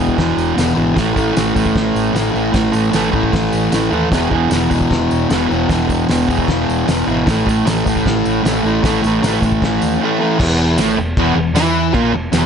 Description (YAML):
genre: garage rock duo or trio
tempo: 152 BPM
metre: 4/4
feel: straight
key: unclear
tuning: A4 = 440 Hz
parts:
  - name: fuzz guitar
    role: riff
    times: 0.0-12.5 s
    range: E2 to E4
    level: -14 LUFS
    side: equal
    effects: distortion
  - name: hollow-body short-scale fingered electric bass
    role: bass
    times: 0.0-12.5 s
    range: E1 to E2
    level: -22 LUFS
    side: equal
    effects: overdrive
  - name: cloth-damped thuddy drum kit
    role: drums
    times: 0.1-12.4 s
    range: crash cymbal, hi-hat, kick drum, snare drum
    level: -20 LUFS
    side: equal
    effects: vintage 12-bit sampler grit
  - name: tambourine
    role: percussion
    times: 0.4-12.4 s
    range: none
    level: -34 LUFS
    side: right 4 dB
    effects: none
room: moderate small room reverb, RT60 0.5 s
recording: nothing above 10.9 kHz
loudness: -13 LUFS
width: side -7 dB against mid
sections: 0.0-10.4 A section; 10.4-12.5 B section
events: none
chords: 0.0 E; 1.0 A5; 4.1 E5; 7.3 A5; 10.4 E5